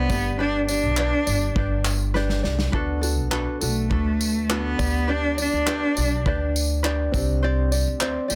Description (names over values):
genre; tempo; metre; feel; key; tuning
acoustic pop; 102 BPM; 4/4; straight; G major; A4 = 439 Hz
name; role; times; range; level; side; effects
rich cello; melody; 0.0-8.4 s; A3 to D4; -27 LUFS; equal; tape echo
felt-muted upright piano; accompaniment; 0.0-8.4 s; A3 to D5; -39 LUFS; equal; none
tenor ukulele; accompaniment; 0.0-8.4 s; C4 to D5; -30 LUFS; equal; none
upright bass; bass; 0.0-8.4 s; G1 to D2; -27 LUFS; equal; none
unplugged drum kit; drums; 0.1-8.4 s; handclaps, kick drum, snare drum, tambourine; -30 LUFS; equal; none
room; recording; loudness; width
moderate small room ambience, RT60 0.5 s; dense, heavily limited modern master; -23 LUFS; mono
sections
0.0-8.4 A section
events
drum fill 2.1-2.7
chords
0.1 G; 2.7 D6; 4.8 G/D; 7.1 Csus2